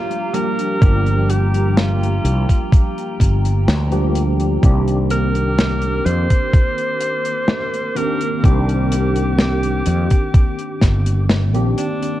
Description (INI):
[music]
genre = vaporwave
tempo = 63 BPM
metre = 4/4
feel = straight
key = unclear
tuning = A4 = 436 Hz
[part]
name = clear alto saxophone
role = melody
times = 0.0-12.2 s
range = D4 to C5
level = -24 LUFS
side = equal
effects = tape echo
[part]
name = tine electric piano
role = accompaniment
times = 0.0-12.2 s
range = Eb3 to G4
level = -22 LUFS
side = equal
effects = medium stereo tremolo, ensemble chorus
[part]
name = warbly tape-like pad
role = sustained chords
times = 0.0-12.2 s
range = G4 to D6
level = -30 LUFS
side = right 1 dB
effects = chorus, built-in reverb
[part]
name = tight metal drum kit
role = drums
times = 0.1-12.2 s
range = hi-hat, snare drum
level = -21 LUFS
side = left 1 dB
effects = none
[part]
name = fretless electric bass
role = bass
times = 0.8-11.7 s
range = G1 to F2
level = -17 LUFS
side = equal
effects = none
[part]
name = electronic kick drum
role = drums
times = 0.8-11.0 s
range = none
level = -13 LUFS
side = equal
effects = none
[sound]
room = light reverb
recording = cassette tape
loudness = -14 LUFS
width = side -14 dB against mid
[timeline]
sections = 0.0-12.2 A section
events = none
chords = 0.0 Gm7; 4.6 Cm9